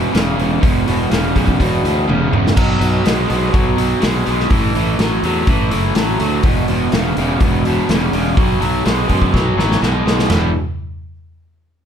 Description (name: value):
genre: blues rock power trio and southern rock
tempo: 124 BPM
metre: 4/4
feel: straight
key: E major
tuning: A4 = 440 Hz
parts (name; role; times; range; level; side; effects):
- raw garage guitar; riff; 0.0-10.5 s; E2 to G#3; -17 LUFS; equal; overdrive
- fuzz fingered electric bass; bass; 0.0-10.5 s; E1 to F#2; -20 LUFS; equal; overdrive
- vintage drum kit; drums; 0.1-10.4 s; crash cymbal, hi-hat, kick drum, snare drum, toms; -18 LUFS; equal; none
room: light reverb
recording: none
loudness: -13 LUFS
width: side -8 dB against mid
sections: 0.0-10.3 A section; 10.3-11.9 B section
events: drum fill 2.1-2.6, 9.3-10.3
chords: 0.0 E5; 2.6 B5; 4.5 A5; 6.4 E5; 8.4 B5; 10.3 E5